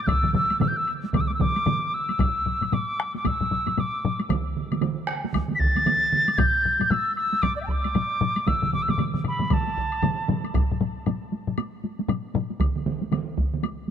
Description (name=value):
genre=japanese traditional, taiko drum ensemble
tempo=115 BPM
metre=4/4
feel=swing 60% on 16ths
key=unclear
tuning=A4 = 440 Hz
part: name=reedy wooden piccolo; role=melody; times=0.0-10.3 s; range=D5 to B6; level=-25 LUFS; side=equal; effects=none
part: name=solo taiko drums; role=percussion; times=0.1-12.5 s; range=none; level=-28 LUFS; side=left 6 dB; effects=none
part: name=solo taiko drums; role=percussion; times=0.1-13.6 s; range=none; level=-28 LUFS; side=right 6 dB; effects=none
part: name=taiko ensemble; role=percussion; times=0.1-13.9 s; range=none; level=-31 LUFS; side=right 1 dB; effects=none
part: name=taiko ensemble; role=percussion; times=0.1-13.5 s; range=none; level=-27 LUFS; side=right 1 dB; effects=none
part: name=woodblock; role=percussion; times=0.1-13.8 s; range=none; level=-38 LUFS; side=left 8 dB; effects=none
room=moderate huge ambient reverb, RT60 4.1 s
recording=none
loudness=-22 LUFS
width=side -8 dB against mid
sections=0.0-10.5 A section; 10.5-13.9 B section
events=speeding up 0.0-13.9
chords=none